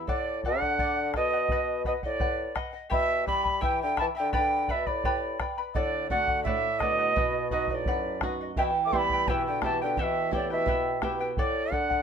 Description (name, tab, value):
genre	andean folk, Andean ensemble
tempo	85 BPM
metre	2/4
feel	straight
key	E minor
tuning	A4 = 440 Hz
part	charango	accompaniment	0.0-12.0 s	E4 to B5	-32 LUFS	left 2 dB	none
part	flamenco guitar	accompaniment	0.0-0.1, 5.8-11.3 s	F#2 to G4	-33 LUFS	right 3 dB	none
part	reedy quena	melody	0.1-12.0 s	D5 to D6	-28 LUFS	right 3 dB	none
part	mellow bassoon	second line	0.1-12.0 s	A2 to A3	-32 LUFS	left 4 dB	none
part	bombo	percussion	0.1-12.0 s	none	-33 LUFS	right 1 dB	none
room	light reverb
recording	minimal, uncompressed stereo recording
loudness	-25 LUFS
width	side -7 dB against mid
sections	0.1-11.4 A section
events	none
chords	0.1 D; 1.5 B; 2.9 Em; 4.3 G; 5.8 D; 7.2 B; 8.6 Em; 11.4 D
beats	| 0.08 0.80 | 1.51 2.22 | 2.92 3.63 | 4.34 5.05 | 5.75 6.46 | 7.17 7.87 | 8.57 9.28 | 9.98 10.68 | 11.38